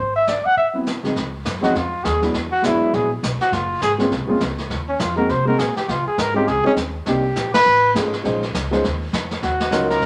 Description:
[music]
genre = jazz, small-group swing and bop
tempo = 203 BPM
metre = 4/4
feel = swing 60% on 8ths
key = Db major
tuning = A4 = 440 Hz
[part]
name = mellow trumpet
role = melody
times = 0.0-10.1 s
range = Db4 to Gb5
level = -21 LUFS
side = equal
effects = none
[part]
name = upright bass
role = bass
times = 0.0-10.1 s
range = Gb1 to Db3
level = -30 LUFS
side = equal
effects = none
[part]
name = vintage brush drum kit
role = drums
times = 0.3-10.1 s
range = brushed snare drum, hi-hat, kick drum, ride cymbal, snare drum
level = -28 LUFS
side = equal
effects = none
[part]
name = warm grand piano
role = accompaniment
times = 0.7-10.0 s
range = Db2 to C5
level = -23 LUFS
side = equal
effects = none
[sound]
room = wet studio reverb, RT60 0.7 s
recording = none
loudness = -20 LUFS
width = mono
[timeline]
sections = 0.0-1.2 A section; 1.2-10.1 B section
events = band accent 7.5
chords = 0.0 Abaug; 1.2 Dbadd9; 2.3 E9; 3.5 Gbmaj9#11; 4.7 Ebmadd9; 5.3 Ab9; 5.9 Dbmaj7sus2; 7.1 Cm9; 7.7 F7alt; 8.2 Bbm11; 9.4 Ebm9

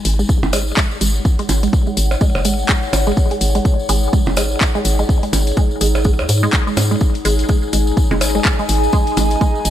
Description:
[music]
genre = minimal techno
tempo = 125 BPM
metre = 4/4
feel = swing 58% on 16ths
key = unclear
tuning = A4 = 441 Hz
[part]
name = tambourine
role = percussion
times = 0.0-9.7 s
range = none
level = -27 LUFS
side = left 2 dB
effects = none
[part]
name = warbly tape-like pad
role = texture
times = 0.1-9.7 s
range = D#4 to G#5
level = -23 LUFS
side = left 1 dB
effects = chorus, built-in reverb, sidechain pumping
[part]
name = hollow knocking FM bass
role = bass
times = 0.1-9.7 s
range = F#1 to G#2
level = -17 LUFS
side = equal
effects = sidechain pumping
[part]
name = house drum kit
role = drums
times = 0.1-9.7 s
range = handclaps, hi-hat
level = -22 LUFS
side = left 2 dB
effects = overdrive, studio reverb
[part]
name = resonant blip pluck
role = riff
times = 0.2-9.4 s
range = G#3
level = -23 LUFS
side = right 2 dB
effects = chorus, phaser, sidechain pumping, ping-pong delay
[part]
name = electronic kick drum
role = drums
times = 0.3-9.5 s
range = none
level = -15 LUFS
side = equal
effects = overdrive, studio reverb
[part]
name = percussion blips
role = percussion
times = 0.4-9.3 s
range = none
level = -22 LUFS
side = right 3 dB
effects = studio reverb, ping-pong delay
[sound]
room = digital ambience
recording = none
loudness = -14 LUFS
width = side -11 dB against mid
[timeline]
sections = 0.0-9.7 A section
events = none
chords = 0.0 G#5

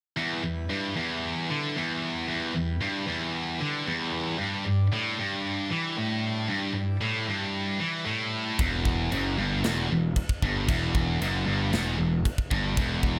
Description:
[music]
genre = heavy metal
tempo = 114 BPM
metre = 4/4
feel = straight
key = E minor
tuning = A4 = 439 Hz
[part]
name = pipe organ, full organ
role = sustained chords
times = 0.2-8.6 s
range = G3 to D5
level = -43 LUFS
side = equal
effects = none
[part]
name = heavy high-gain guitar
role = riff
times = 0.2-13.2 s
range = E2 to E3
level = -32 LUFS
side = equal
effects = distortion
[part]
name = high-gain distorted guitar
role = riff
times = 0.2-13.2 s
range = E2 to E3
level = -32 LUFS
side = equal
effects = distortion
[part]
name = fuzz picked electric bass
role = bass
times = 8.6-13.2 s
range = E1 to G1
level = -32 LUFS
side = equal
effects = overdrive
[part]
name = tight metal drum kit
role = drums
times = 8.6-13.2 s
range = china cymbal, kick drum, snare drum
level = -32 LUFS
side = equal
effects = none
[sound]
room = small room ambience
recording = none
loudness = -28 LUFS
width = mono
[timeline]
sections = 0.2-8.6 A section; 8.6-13.2 B section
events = none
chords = 0.2 Em; 4.4 G5; 8.6 Em

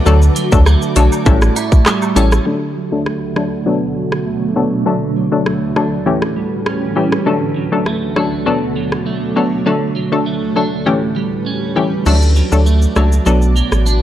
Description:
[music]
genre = dancehall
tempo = 100 BPM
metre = 4/4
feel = straight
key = D major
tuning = A4 = 439 Hz
[part]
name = hollow square pluck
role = accompaniment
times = 0.0-14.0 s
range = E3 to A4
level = -17 LUFS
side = left 4 dB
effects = chorus, low-pass filter
[part]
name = granular cloud pad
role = sustained chords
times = 0.0-14.0 s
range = D2 to D6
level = -22 LUFS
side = equal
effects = built-in reverb, sidechain pumping, low-pass filter
[part]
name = clean electric guitar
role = arpeggios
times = 0.0-14.0 s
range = A2 to E4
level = -20 LUFS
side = right 6 dB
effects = analog chorus, low-pass filter
[part]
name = round analog bass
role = bass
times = 0.1-2.4, 12.1-14.0 s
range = A1 to D2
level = -11 LUFS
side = equal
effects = none
[part]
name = island pop drum kit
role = drums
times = 0.1-14.0 s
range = crash cymbal, handclaps, hi-hat, kick drum, rim click, shaker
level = -16 LUFS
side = equal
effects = none
[part]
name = woodblock and cabasa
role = percussion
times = 0.1-2.3 s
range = none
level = -29 LUFS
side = right 5 dB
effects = none
[sound]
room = little or no reverb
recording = dark, warm production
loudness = -13 LUFS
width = side -11 dB against mid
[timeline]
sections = 0.0-2.5 A section; 2.5-12.1 B section; 12.1-14.0 C section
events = filter sweep 2.5-12.1; kick muted 12.1-14.0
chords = 0.1 D; 1.3 A7; 2.5 D; 3.7 Bm7; 4.9 D; 6.1 A7; 7.3 D; 8.5 Bm7; 9.7 D; 10.9 A7; 12.1 D; 13.3 Bm7

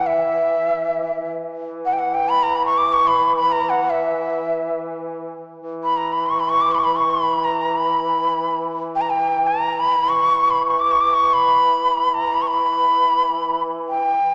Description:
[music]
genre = Turkish makam ensemble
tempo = free time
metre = none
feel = none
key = E makam nikriz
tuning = A4 = 440 Hz
[part]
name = breathy bright ney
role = melody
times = 0.0-14.3 s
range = E5 to D6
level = -16 LUFS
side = equal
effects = none
[part]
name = warm duduk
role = drone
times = 0.0-14.2 s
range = E3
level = -26 LUFS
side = equal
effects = none
[sound]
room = wet concert hall reverb, RT60 1.9 s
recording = recorded in a church or concert hall, small speaker sound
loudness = -16 LUFS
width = side -31 dB against mid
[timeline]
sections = 0.0-5.6 A section; 5.6-14.3 A section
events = none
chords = none

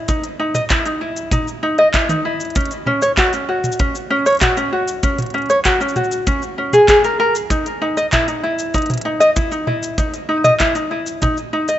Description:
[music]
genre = folktronica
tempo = 97 BPM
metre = 4/4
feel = straight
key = unclear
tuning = A4 = 439 Hz
[part]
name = ukulele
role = arpeggios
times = 0.0-11.8 s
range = C#4 to D#5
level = -16 LUFS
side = equal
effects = digital delay
[part]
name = kick drum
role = drums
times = 0.1-11.3 s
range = none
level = -24 LUFS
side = equal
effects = none
[part]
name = organic electronic drum kit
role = drums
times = 0.1-11.8 s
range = cabasa, handclaps, hi-hat, toms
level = -21 LUFS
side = equal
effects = overdrive
[sound]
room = light reverb, small room reverb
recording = rough home demo mix, nothing above 7.9 kHz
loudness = -14 LUFS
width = side -12 dB against mid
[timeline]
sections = 0.0-11.8 A section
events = none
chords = none

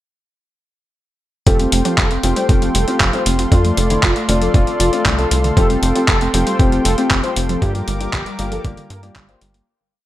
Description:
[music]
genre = italo disco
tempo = 117 BPM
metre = 4/4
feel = straight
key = F major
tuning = A4 = 440 Hz
[part]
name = mellow synth brass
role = melody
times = 1.5-9.7 s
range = G3 to C5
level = -21 LUFS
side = left 1 dB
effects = chorus, digital delay
[part]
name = warm analog pad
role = sustained chords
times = 1.5-9.7 s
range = A4 to D6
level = -24 LUFS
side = equal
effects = chorus, vintage 12-bit sampler grit
[part]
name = analog pluck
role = arpeggios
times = 1.5-9.7 s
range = D3 to Bb3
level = -27 LUFS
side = right 4 dB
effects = chorus, vintage 12-bit sampler grit, digital delay
[part]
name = warm baby grand piano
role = stabs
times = 1.5-9.6 s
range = A3 to G4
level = -24 LUFS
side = left 4 dB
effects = none
[part]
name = tight sequencer bass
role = bass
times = 1.5-9.6 s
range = F1 to G2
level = -19 LUFS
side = equal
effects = tube saturation
[part]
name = dusty soul sampler-style drum kit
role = drums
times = 1.5-9.6 s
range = handclaps, hi-hat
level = -20 LUFS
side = equal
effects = gated reverb
[part]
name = electronic kick drum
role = drums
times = 1.5-9.3 s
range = none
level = -16 LUFS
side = equal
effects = none
[sound]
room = little or no reverb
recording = none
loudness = -13 LUFS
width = side -14 dB against mid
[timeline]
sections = 1.5-9.7 verse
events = fade-out 6.9-9.7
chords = 1.5 Fadd9; 3.5 Dm7/F; 5.6 Fadd9; 7.6 Gm7

